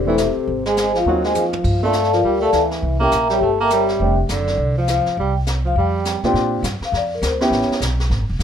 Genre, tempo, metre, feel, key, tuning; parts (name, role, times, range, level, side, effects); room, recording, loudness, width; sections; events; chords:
jazz, small-group swing and bop; 204 BPM; 4/4; swing 61% on 8ths; F major; A4 = 439 Hz
vibraphone with soft mallets; melody; 0.0-7.8 s; C4 to Bb5; -19 LUFS; left 2 dB
breathy tenor saxophone; second line; 0.0-6.2 s; C3 to Bb3; -23 LUFS; right 4 dB
upright bass; bass; 0.0-8.4 s; E1 to Bb2; -22 LUFS; equal
warm baby grand piano; accompaniment; 0.1-4.2, 6.2-7.8 s; Bb2 to A4; -20 LUFS; equal
jazz brush drum kit; drums; 0.2-8.4 s; brushed snare drum, hi-hat, kick drum, ride cymbal, snare drum, toms; -28 LUFS; equal
light reverb; minimal, uncompressed stereo recording; -16 LUFS; side -8 dB against mid
0.0-6.3 A section; 6.3-8.4 B section
drum fill 1.4
0.5 Ab9; 1.6 Gm9; 2.8 C7b9; 4.0 F6; 5.2 Csus4; 5.8 Fsus2; 6.3 Bb69; 7.5 A9